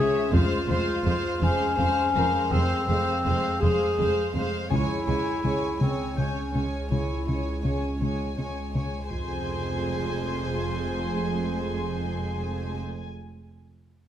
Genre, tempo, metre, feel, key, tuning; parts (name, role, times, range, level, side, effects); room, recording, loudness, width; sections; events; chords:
cinematic, suspense film score; 82 BPM; 3/4; straight; F harmonic minor; A4 = 440 Hz
warm chamber violin section; melody; 0.0-12.8 s; Fb5 to Ab5; -37 LUFS; left 4 dB
mellow clarinet; second line; 0.0-12.8 s; C4 to Ab4; -29 LUFS; left 2 dB
warm symphonic violin section; second line; 0.0-12.8 s; C5 to Db5; -35 LUFS; right 1 dB
dark symphonic viola section; accompaniment; 0.0-12.8 s; Ab3; -34 LUFS; right 2 dB
plucky analog bass; riff; 0.0-9.0 s; F2 to Db3; -28 LUFS; left 2 dB
dark studio cello section; bass; 0.0-12.8 s; Db2 to F2; -33 LUFS; right 3 dB
dark symphonic double bass section; bass; 0.0-12.8 s; F1 to Db2; -34 LUFS; right 3 dB
analog drone; drone; 0.0-12.8 s; Db2 to F2; -34 LUFS; equal; chorus
concert harp; texture; 0.0-9.1 s; Bb4 to G6; -38 LUFS; left 5 dB
solo taiko drums; drums; 0.3-10.5 s; -37 LUFS; right 1 dB
warm chamber violin section; texture; 9.1-13.1 s; Ab5 to C6; -38 LUFS; left 5 dB
moderate scoring stage reverb, RT60 1.5 s; close, detailed microphones; -24 LUFS; side -10 dB against mid
0.0-9.1 A section; 9.1-13.5 B section
0.3 Fm; 4.7 Dbm; 9.1 Fm